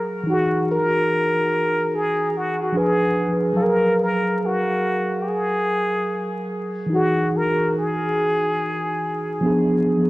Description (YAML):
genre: hip hop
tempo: 72 BPM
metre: 4/4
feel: swing 62% on 16ths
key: unclear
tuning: A4 = 441 Hz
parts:
  - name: trumpet with plunger mute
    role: melody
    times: 0.0-9.8 s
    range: F#4 to A#4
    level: -22 LUFS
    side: equal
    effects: low-pass filter, analog delay
  - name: mellow tine electric piano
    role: accompaniment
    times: 0.0-10.1 s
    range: E3 to E#5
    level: -21 LUFS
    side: equal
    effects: medium stereo tremolo, cassette tape, low-pass filter, analog delay
room: light reverb, small room ambience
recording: echo-heavy mix, vinyl crackle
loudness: -19 LUFS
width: side -19 dB against mid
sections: 0.0-10.1 A section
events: none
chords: 0.3 Emaj9; 2.8 Fdim7; 3.6 F#maj9; 6.9 Emaj9; 9.4 Fdim7